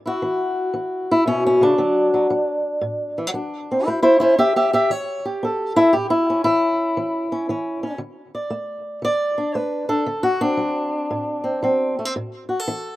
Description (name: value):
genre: acoustic country blues, solo or duo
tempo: 116 BPM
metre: 4/4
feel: swing 66% on 8ths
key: A mixolydian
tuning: A4 = 441 Hz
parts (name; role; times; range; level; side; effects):
- fingerpicked swing-style acoustic guitar; solo; 0.0-13.0 s; A2 to E5; -18 LUFS; equal; slapback echo
room: little or no reverb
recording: recorded outdoors, with no room sound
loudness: -18 LUFS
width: side -16 dB against mid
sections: 0.0-13.0 A section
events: steel-string acoustic guitar solo 0.0-13.0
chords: 0.0 A (rootless); 1.8 D; 3.9 A7; 8.0 D7; 12.1 A5